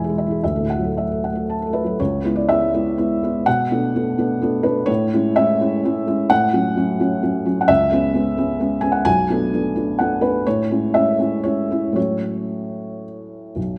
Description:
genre	neoclassical minimalist piano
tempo	109-133 BPM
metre	3/4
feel	rubato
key	B dorian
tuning	A4 = 440 Hz
part	felt-muted upright piano	solo	0.0-13.8 s	B1 to B5	-20 LUFS	equal	none
room	moderate concert hall reverb, RT60 1.9 s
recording	none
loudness	-19 LUFS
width	mono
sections	0.0-2.0 A section; 2.0-13.6 B section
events	none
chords	0.4 Dadd9; 2.0 C#m7; 3.5 Bm7; 4.9 Amaj7; 6.3 F#m/A; 7.7 C#m7; 9.1 Bm7; 10.4 Amaj7; 12.0 F#m/A

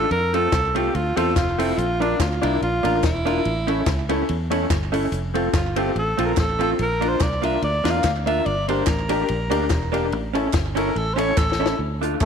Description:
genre	ska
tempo	144 BPM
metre	4/4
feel	swing 54% on 8ths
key	unclear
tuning	A4 = 440 Hz
part	breathy alto saxophone	melody	0.0-11.8 s	D4 to F5	-24 LUFS	right 1 dB	none
part	vintage hollow-body jazz guitar	accompaniment	0.0-12.1 s	A3 to A4	-26 LUFS	right 11 dB	slapback echo
part	dark upright piano	stabs	0.0-12.2 s	C4 to Bb4	-26 LUFS	left 9 dB	slapback echo
part	fingered electric bass	bass	0.0-12.3 s	E1 to F2	-26 LUFS	right 1 dB	none
part	compact cocktail drum kit	drums	0.1-12.3 s	hi-hat, kick drum, ride cymbal, rim click, snare drum	-26 LUFS	left 2 dB	none
part	group handclap	percussion	0.5-12.3 s	none	-35 LUFS	right 9 dB	slapback echo
room	moderate plate reverb, RT60 2.4 s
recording	1960s-style stereo with parts hard left and right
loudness	-19 LUFS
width	side -7 dB against mid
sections	0.0-11.8 A section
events	alto saxophone solo 0.0-11.8; drum fill 11.4-11.8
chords	0.1 F; 1.8 Bb; 3.5 A; 5.1 F; 6.8 Bb; 8.5 Gm; 10.1 A

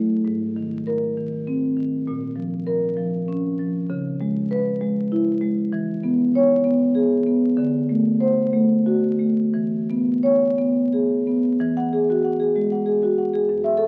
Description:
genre	classical, contemporary piece for solo marimba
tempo	58-67 BPM (dotted quarters)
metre	6/8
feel	rubato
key	E major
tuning	A4 = 441 Hz
part	marimba with soft mallets	solo	0.0-13.9 s	F#2 to F#5	-21 LUFS	equal	none
room	wet stone room reverb, RT60 1.1 s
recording	very old 78 rpm record, vinyl crackle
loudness	-21 LUFS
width	mono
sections	0.0-11.6 A section; 11.6-13.9 A section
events	none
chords	0.3 G#add9; 2.1 A#m; 3.9 C#m7; 5.7 E6; 7.6 D7; 9.6 E6; 11.6 Eadd9

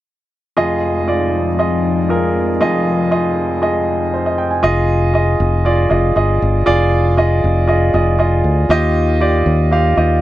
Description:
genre	pop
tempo	118 BPM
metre	4/4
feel	straight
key	unclear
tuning	A4 = 440 Hz
part	clear baby grand piano	accompaniment	0.6-10.2 s	F1 to Ab5	-15 LUFS	right 1 dB	none
part	warm analog pad	sustained chords	0.6-4.6 s	F3 to Ab4	-22 LUFS	left 2 dB	chorus
part	fingered electric bass	bass	4.6-10.2 s	F1 to Eb2	-15 LUFS	equal	none
room	little or no reverb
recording	dry, close 1970s-style studio recording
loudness	-13 LUFS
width	side -15 dB against mid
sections	0.6-4.6 A section; 4.6-10.2 B section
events	none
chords	0.6 Fm7; 8.7 Ebadd9

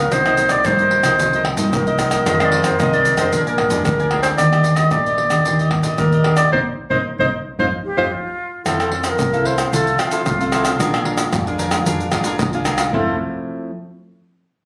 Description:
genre	samba and choro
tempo	112 BPM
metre	4/4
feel	straight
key	F major from 8.7 s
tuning	A4 = 445 Hz
part	warm clarinet	melody	0.0-8.0 s	Bb4 to Eb5	-20 LUFS	equal	none
part	cavaquinho	accompaniment	0.0-13.2 s	D4 to Ab5	-27 LUFS	equal	none
part	nylon-string guitar	accompaniment	0.0-13.7 s	F2 to A4	-27 LUFS	equal	none
part	hollow-body short-scale fingered electric bass	bass	0.0-13.2 s	F1 to G2	-25 LUFS	equal	none
part	egg shaker, surdo, pandeiro and tamborim	percussion	0.1-13.1 s	none	-24 LUFS	equal	none
part	bright wooden flute	second line	2.3-3.7, 7.9-13.2 s	F4 to F5	-23 LUFS	equal	none
room	moderate studio reverb, RT60 0.7 s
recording	recorded on a phone in the room, club reverb, compression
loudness	-18 LUFS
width	mono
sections	0.0-8.7 A section; 8.7-12.9 B section; 12.9-14.7 C section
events	band accent 6.5-8.7; drum fill 8.3-8.7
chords	0.1 Cm7; 2.3 Fm7; 3.3 Bb7; 4.4 Ebmaj7; 6.5 Cm7; 7.6 F5; 8.7 Fmaj7; 10.8 Bb7; 12.9 Fmaj7

